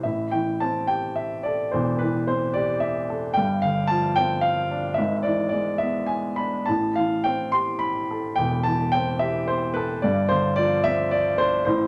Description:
classical, lyrical solo piano; 109 BPM; 3/4; rubato; A minor; A4 = 440 Hz
warm grand piano; solo; 0.0-11.9 s; E1 to C6; -24 LUFS; equal
moderate studio ambience, RT60 0.5 s; -24 LUFS; mono
0.0-11.9 A section
0.0 Am7; 3.4 G7sus4; 5.0 E7/G#; 6.7 Am9; 10.0 G7sus4

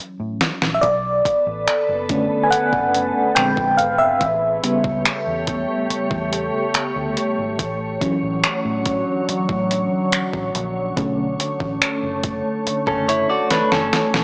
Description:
contemporary R&B; 71 BPM; 4/4; straight; B minor; A4 = 440 Hz
FM electric piano with tremolo; accompaniment; 0.0-14.2 s; C#3 to G#5; -20 LUFS; equal
vintage muted fingered electric bass; bass; 0.2-14.2 s; F#1 to A2; -30 LUFS; equal
crisp 8-bit digital drum machine; drums; 0.4-14.2 s; finger snaps, hi-hat, kick drum, snare drum; -21 LUFS; equal; overdrive
glassy FM pad; sustained chords; 1.4-14.2 s; D3 to C#5; -23 LUFS; equal; ensemble chorus, built-in reverb
direct-recorded clean electric guitar; arpeggios; 12.9-14.2 s; C#4 to D5; -18 LUFS; equal; wide subtle chorus
light reverb, digital ambience; dry, gritty hardware recording, cassette tape, small speaker sound; -17 LUFS; side -36 dB against mid
0.0-14.2 A section
drum fill 0.0-0.8, 13.5-14.2; FM electric piano solo 0.0-14.2
0.0 F#m7; 0.8 Bm7; 3.4 A#9; 4.2 A7; 7.6 Dmaj7/A; 11.0 Bm9

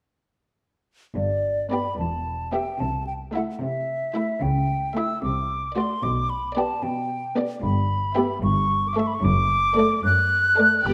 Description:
quick classical-period movement for symphony orchestra; 74 BPM (dotted quarters); 6/8; rubato; G major, D major from 7.6 s; A4 = 440 Hz
hollow concert flute; second line; 1.2-10.9 s; D5 to F#6; -26 LUFS; equal
rich studio double bass section; bass; 1.2-10.9 s; E1 to C#2; -31 LUFS; equal
warm studio cello section; bass; 1.2-10.9 s; E2 to C#3; -30 LUFS; equal
rich studio violin section; melody; 1.7-10.9 s; D5 to E5; -38 LUFS; equal
warm studio violin section; second line; 1.7-10.9 s; E4 to A4; -31 LUFS; equal
dark studio viola section; accompaniment; 1.7-10.9 s; A3 to B3; -30 LUFS; equal
moderate concert hall reverb, RT60 1.6 s; -24 LUFS; mono
1.2-10.9 A section
1.2 G; 2.0 Em; 2.8 Am/C; 4.4 A7/C#; 5.2 D7/C; 6.0 G/B; 7.6 Em/G; 8.4 A7/G; 9.2 D/F#

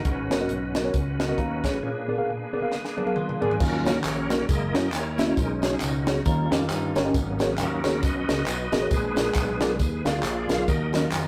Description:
uptempo gospel; 136 BPM; 4/4; swing 58% on 8ths; Eb minor; A4 = 441 Hz
clean electric guitar; second line; 0.0, 3.0-7.1 s; D4 to Bb4; -39 LUFS; equal; phaser, tape echo
bright tonewheel organ; sustained chords; 0.0-11.3 s; Gb3 to F5; -32 LUFS; equal; slow rotary speaker, chorus vibrato
modern bright fingered electric bass; bass; 0.0-11.3 s; Gb1 to G2; -33 LUFS; equal
crisp fusion drum kit; drums; 0.0-11.2 s; crash cymbal, hi-hat, kick drum, snare drum, toms; -30 LUFS; equal
tine electric piano; accompaniment; 0.1-11.3 s; Ab2 to Bb5; -29 LUFS; equal
tambourine and handclaps; percussion; 3.6-11.2 s; -37 LUFS; equal
wet studio reverb, RT60 0.6 s; rough rehearsal-room recording; -25 LUFS; mono
0.0-3.6 A section; 3.6-11.3 B section
drum fill 2.7-3.6; tonewheel organ solo 3.6-11.3
0.1 Abm11; 1.8 Bb7b9; 3.6 Ebm7; 4.5 Gb7; 5.4 B69; 6.3 Eb7; 7.1 Abm11; 8.9 Bb7b9; 10.7 Ebm9

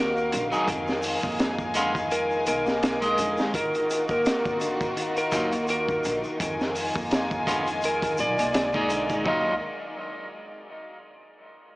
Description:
trip hop; 84 BPM; 4/4; swing 55% on 16ths; Eb harmonic minor; A4 = 445 Hz
electric slide guitar; melody; 0.0-9.5 s; Bb4 to Eb5; -28 LUFS; equal; tape echo
warm chamber violin section; sustained chords; 0.0-9.6 s; Ab3 to Ab5; -30 LUFS; left 1 dB
clean electric guitar; arpeggios; 0.0-9.6 s; D3 to Bb3; -35 LUFS; right 1 dB; wide subtle chorus, analog delay
upright bass; bass; 0.0-9.6 s; Bb1 to F2; -37 LUFS; equal
tube shaker; percussion; 0.2-9.2 s; -44 LUFS; left 1 dB
crunchy breakbeat drum kit; drums; 0.3-9.4 s; hi-hat, kick drum, snare drum; -29 LUFS; equal
electric guitar at the edge of break-up; accompaniment; 0.5-9.5 s; Gb3 to Eb5; -30 LUFS; equal; tremolo, tape echo
wet huge ambient reverb, RT60 3.8 s; dreamy mix soaked in reverb, small speaker sound; -23 LUFS; side -21 dB against mid
0.0-9.3 A section; 9.3-11.8 B section
0.0 Ebmadd9; 0.7 Fm7b5; 3.5 Ebmadd9; 6.4 Fm7b5; 9.3 Ebmadd9

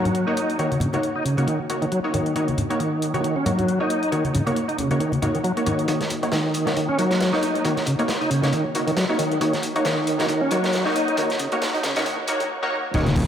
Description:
breakbeat, breaks; 136 BPM; 4/4; swing 56% on 16ths; Eb minor; A4 = 439 Hz
bright tonewheel organ; riff; 0.0-13.1 s; Db3 to Eb4; -23 LUFS; equal; overdrive, chorus vibrato, slow rotary speaker, vintage 12-bit sampler grit, low-pass filter, analog delay
orchestra-hit-like synth stab; stabs; 0.0-13.1 s; Bb3 to Db5; -24 LUFS; equal; built-in reverb, cassette tape, analog delay
electronic hi-hat; drums; 0.1-13.3 s; -36 LUFS; left 3 dB
congas; percussion; 0.1-5.8, 13.1-13.3 s; -27 LUFS; left 1 dB
crunchy breakbeat drum kit; drums; 5.9-13.3 s; crash cymbal, hi-hat, kick drum, snare drum; -27 LUFS; equal; high-pass filter on kick, high-pass filter on hats, high-pass filter on cymbals, high-pass filter on snare, high-pass filter on room, analog delay
detuned saw bass; bass; 12.9-13.2 s; Eb1; -23 LUFS; equal
wet echo chamber reverb, RT60 1.6 s, small room ambience; echo-heavy mix, high-pass filter; -20 LUFS; side -9 dB against mid
0.0-5.9 A section; 5.9-12.9 B section
filter sweep on tonewheel organ 0.0-5.9; build-up 5.9-12.9; filter sweep on synth stab 5.9-12.9; filter sweep 5.9-12.9
0.0 Ebm7

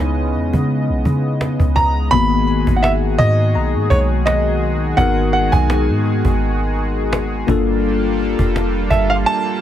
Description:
contemporary R&B; 84 BPM; 4/4; swing 54% on 16ths; G# minor; A4 = 440 Hz
warm grand piano; melody; 0.0-9.6 s; C#5 to B5; -19 LUFS; right 2 dB; ping-pong delay
tine electric piano; accompaniment; 0.0-9.6 s; D#3 to A#4; -22 LUFS; left 6 dB; overdrive, phaser
chorused pulse-width pad; sustained chords; 0.0-9.6 s; C#3 to D#5; -22 LUFS; left 1 dB
soft 808-style bass; bass; 0.0-9.3 s; F1 to C#3; -18 LUFS; equal
cajon; drums; 0.3-9.4 s; -22 LUFS; equal
soft round pluck; texture; 2.8-9.6 s; F#5 to B#5; -30 LUFS; right 2 dB; chorus, ping-pong delay
small room ambience; -14 LUFS; side -11 dB against mid
0.0-2.1 A section; 2.1-9.6 B section
0.0 C#m9; 2.1 G#m9; 7.5 Gm9

